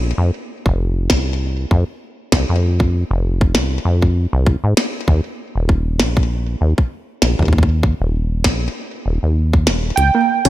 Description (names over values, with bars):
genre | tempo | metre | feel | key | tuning
IDM | 98 BPM | 4/4 | swing 56% on 16ths | unclear | A4 = 444 Hz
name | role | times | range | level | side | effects
deep acid bass | bass | 0.0-10.5 s | Eb1 to Ab2 | -16 LUFS | equal | none
electronic kick drum | drums | 0.7-10.5 s | none | -15 LUFS | equal | small room reverb
glitchy drum kit | drums | 1.1-10.5 s | hi-hat, snare drum | -21 LUFS | equal | small room reverb, ping-pong delay
warbly lo-fi synth keys | melody | 10.0-10.5 s | G5 | -15 LUFS | right 7 dB | chorus
warbly dusty pluck | arpeggios | 10.1-10.5 s | Bb3 to Db4 | -17 LUFS | right 5 dB | chorus
room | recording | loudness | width
light reverb | bright 1980s-style digital production | -15 LUFS | side -15 dB against mid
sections
0.0-10.5 A section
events
none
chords
0.2 F5; 5.1 Eb5; 10.0 Db5